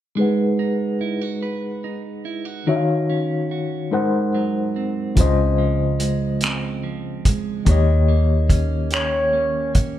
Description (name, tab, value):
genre	slow six-eight R&B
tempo	48 BPM (dotted quarters)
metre	6/8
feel	straight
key	unclear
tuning	A4 = 439 Hz
part	clean electric guitar	second line	0.2-10.0 s	G#2 to B4	-26 LUFS	right 6 dB	none
part	overdriven reed electric piano	accompaniment	0.2-10.0 s	C#3 to F#5	-22 LUFS	left 3 dB	tremolo, low-pass filter
part	vintage muted fingered electric bass	bass	5.2-10.0 s	C#2 to D#2	-20 LUFS	equal	none
part	cloth-damped thuddy drum kit	drums	5.2-9.9 s	finger snaps, hi-hat, kick drum	-19 LUFS	equal	none
part	soft octave-layered synth lead	melody	8.9-9.7 s	C#5	-20 LUFS	right 1 dB	chorus, phaser
room	wet large studio reverb, RT60 1.4 s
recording	band playing live in one room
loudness	-18 LUFS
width	side -12 dB against mid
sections	0.2-10.0 A section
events	filter sweep on reed electric piano 0.2-10.0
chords	0.2 G#m7; 2.7 D#m7; 3.9 G#7; 5.2 C#maj7; 7.7 D#7